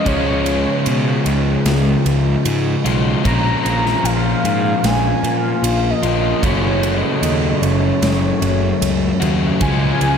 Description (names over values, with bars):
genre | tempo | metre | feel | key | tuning
rock, shoegaze and dream pop | 75 BPM | 4/4 | straight | Db major | A4 = 440 Hz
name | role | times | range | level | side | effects
warm velvety synth lead | melody | 0.0-10.2 s | Db5 to Bb5 | -23 LUFS | equal | chorus, analog delay
overdriven electric guitar | riff | 0.0-10.2 s | Gb2 to Db4 | -21 LUFS | right 6 dB | reverse reverb
overdriven semi-hollow guitar | riff | 0.0-10.2 s | Gb2 to Gb4 | -19 LUFS | left 5 dB | lush chorus
fuzz picked electric bass | bass | 0.1-10.2 s | Gb1 to Cb3 | -20 LUFS | equal | overdrive
big rock drum kit | drums | 0.1-10.2 s | kick drum, ride cymbal, snare drum | -25 LUFS | right 1 dB | none
room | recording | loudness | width
wet lush hall reverb, RT60 2.8 s | dreamy mix soaked in reverb | -14 LUFS | side -7 dB against mid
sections
0.0-10.2 A section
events
none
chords
0.0 Db; 3.2 Bbm7; 6.4 Gbm; 9.6 Db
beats
| 0.06 0.86 1.65 2.45 | 3.25 4.04 4.84 5.64 | 6.43 7.23 8.02 8.82 | 9.61